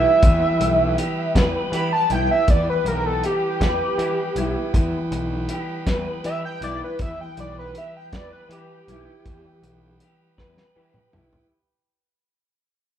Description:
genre	psychedelic rock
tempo	53 BPM (dotted quarters)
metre	6/8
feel	straight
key	E minor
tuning	A4 = 440 Hz
part	pulse-width lead	melody	0.0-10.0 s	G4 to B5	-22 LUFS	right 1 dB	chorus
part	combo organ	sustained chords	0.0-11.5 s	E3 to B4	-33 LUFS	right 6 dB	spring reverb
part	electric guitar through a small old amp	riff	0.0-11.5 s	E3 to B4	-27 LUFS	left 1 dB	rotary speaker
part	fuzz picked electric bass	bass	0.0-11.3 s	B1 to E3	-29 LUFS	equal	overdrive
part	congas	percussion	0.1-11.4 s	none	-34 LUFS	left 6 dB	none
part	cloth-damped thuddy drum kit	drums	0.2-11.5 s	hi-hat, kick drum, snare drum, toms	-20 LUFS	equal	none
room	moderate large studio reverb, RT60 0.9 s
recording	band playing live in one room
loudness	-19 LUFS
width	side -10 dB against mid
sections	0.0-11.5 A section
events	fade-out 0.0-11.5; analog synth lead solo 0.0-11.5; drum fill 10.4-11.5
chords	0.0 Em

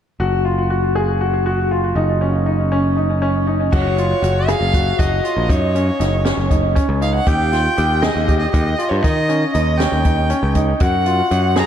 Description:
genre	progressive instrumental, band music in an uneven meter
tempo	238 BPM (eighths)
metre	7/8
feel	straight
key	unclear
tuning	A4 = 440 Hz
part	bright baby grand piano	arpeggios	0.2-11.7 s	C#4 to G#4	-20 LUFS	left 1 dB	tape echo
part	modern bright picked electric bass	bass	0.2-11.6 s	F#1 to D#3	-18 LUFS	equal	none
part	rich violin	melody	3.7-11.7 s	C#5 to A#5	-21 LUFS	equal	tape echo
part	open jazz drum kit	drums	3.7-11.7 s	crash cymbal, hi-hat, kick drum, rim click, snare drum	-20 LUFS	equal	none
room	moderate church reverb, RT60 3.2 s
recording	dreamy mix soaked in reverb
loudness	-15 LUFS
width	side -9 dB against mid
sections	0.2-3.7 A section; 3.7-11.7 B section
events	none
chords	0.2 F#5; 7.3 D#; 10.8 N.C.

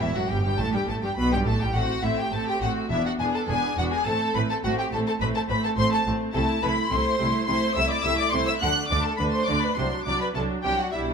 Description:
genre	quick classical-period movement for string orchestra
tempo	104 BPM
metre	4/4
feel	rubato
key	unclear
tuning	A4 = 441 Hz
part	warm symphonic violin section	melody	0.0-11.0 s	E5 to F#6	-27 LUFS	left 2 dB	none
part	clear symphonic violin section	second line	0.0-11.1 s	E4 to F#5	-30 LUFS	left 2 dB	none
part	clear symphonic viola section	accompaniment	0.0-11.1 s	E3 to E4	-28 LUFS	right 2 dB	none
part	clear symphonic double bass section	bass	0.0-11.1 s	E1 to D2	-30 LUFS	right 1 dB	none
part	rich symphonic cello section	bass	0.0-11.1 s	E2 to D3	-31 LUFS	right 2 dB	none
room	moderate large studio reverb, RT60 1.1 s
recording	minimal, uncompressed stereo recording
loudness	-22 LUFS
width	side -6 dB against mid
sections	0.0-11.1 A section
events	none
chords	0.0 G; 1.8 Am; 2.9 E5; 4.1 Am; 6.3 Am/C; 8.6 D5; 9.8 D7/C

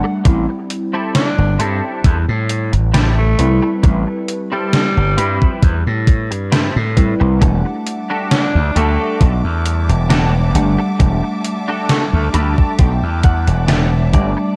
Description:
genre	vaporwave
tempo	67 BPM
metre	4/4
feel	swing 53% on 16ths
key	E minor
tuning	A4 = 440 Hz
part	warbly lo-fi synth keys	accompaniment	0.0-14.6 s	G3 to F#5	-25 LUFS	equal	subtle chorus, analog delay
part	clean electric guitar	riff	0.0-14.6 s	C4 to B5	-26 LUFS	equal	analog chorus, analog delay
part	gritty slap bass	bass	0.3-14.3 s	E1 to A2	-18 LUFS	equal	overdrive
part	electronic kick drum	drums	0.3-14.3 s	none	-14 LUFS	equal	overdrive
part	gated 80s digital drum machine	drums	0.3-14.3 s	hi-hat, snare drum	-20 LUFS	equal	gated reverb, gated reverb snare, overdrive
part	raspy alto saxophone	melody	1.1-12.3 s	G3 to D4	-26 LUFS	equal	vintage 12-bit sampler grit, tape echo
part	rich studio string section	sustained chords	7.4-14.6 s	G3 to D6	-30 LUFS	equal	vintage 12-bit sampler grit
room	light reverb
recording	cassette tape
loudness	-16 LUFS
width	mono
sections	0.0-14.6 A section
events	clean electric guitar fill 11.9-14.6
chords	0.3 Am7; 7.4 Em11

